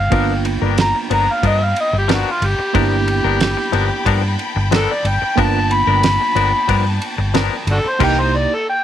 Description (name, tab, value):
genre	straight-eighth soul blues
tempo	91 BPM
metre	4/4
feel	straight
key	unclear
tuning	A4 = 440 Hz
part	overdriven harmonica	melody	0.0-8.8 s	D4 to B5	-18 LUFS	left 1 dB	none
part	barky reed electric piano	accompaniment	0.0-8.5 s	A#3 to G4	-25 LUFS	right 11 dB	fast tremolo
part	clear studio string section	sustained chords	0.0-8.5 s	D#5 to D#6	-28 LUFS	left 4 dB	none
part	vintage muted fingered electric bass	bass	0.0-8.4 s	G1 to G2	-19 LUFS	equal	none
part	direct-recorded clean electric guitar	stabs	0.1-8.2 s	E3 to A#4	-22 LUFS	left 12 dB	harmonic tremolo
part	damped 70s drum kit	drums	0.1-8.2 s	crash cymbal, kick drum, ride cymbal, snare drum	-23 LUFS	right 3 dB	none
room	small room ambience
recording	1960s-style stereo with parts hard left and right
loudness	-14 LUFS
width	side -10 dB against mid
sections	0.0-8.8 A section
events	harmonica solo 0.0-8.8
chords	0.1 G7#9; 8.0 C7#9